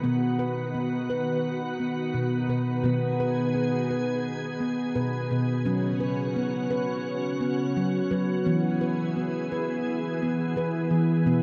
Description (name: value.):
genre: world meditative, meditative tuned percussion.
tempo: 86 BPM.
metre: 4/4.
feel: swing 54% on 16ths.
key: B major.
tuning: A4 = 441 Hz.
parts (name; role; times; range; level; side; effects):
soft additive organ-like pad; sustained chords; 0.0-11.4 s; C#3 to G#4; -32 LUFS; equal; ensemble chorus, built-in reverb.
handpan; arpeggios; 0.0-11.4 s; B2 to B4; -28 LUFS; equal; delay.
room: wet huge ambient reverb, RT60 7.9 s.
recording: in a vast, echoing space.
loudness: -27 LUFS.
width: mono.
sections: 0.0-11.4 A section.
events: none.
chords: 0.0 B; 5.7 F#5; 8.5 E.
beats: | 0.04 0.74 1.44 2.15 | 2.85 3.55 4.25 4.95 | 5.66 6.36 7.06 7.76 | 8.46 9.16 9.87 10.57 | 11.27.